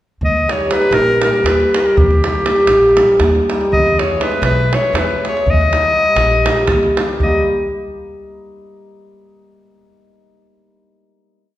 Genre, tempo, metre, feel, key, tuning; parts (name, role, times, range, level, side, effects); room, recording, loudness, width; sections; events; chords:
balkan folk, Balkan wedding band; 240 BPM (eighths); 7/8; straight; Eb phrygian dominant; A4 = 443 Hz
clear clarinet; melody; 0.2-7.5 s; G4 to Eb5; -16 LUFS; left 1 dB
upright bass; bass; 0.2-7.5 s; Bb1 to E2; -19 LUFS; equal
davul; percussion; 0.2-7.5 s; -20 LUFS; right 2 dB
cimbalom; accompaniment; 0.5-7.5 s; G3 to G#4; -16 LUFS; equal
wet recital hall reverb, RT60 1.5 s; recorded in a church or concert hall; -12 LUFS; side -14 dB against mid
0.2-7.2 A section; 7.2-9.0 final chord
0.2 Eb; 3.7 E; 5.5 Eb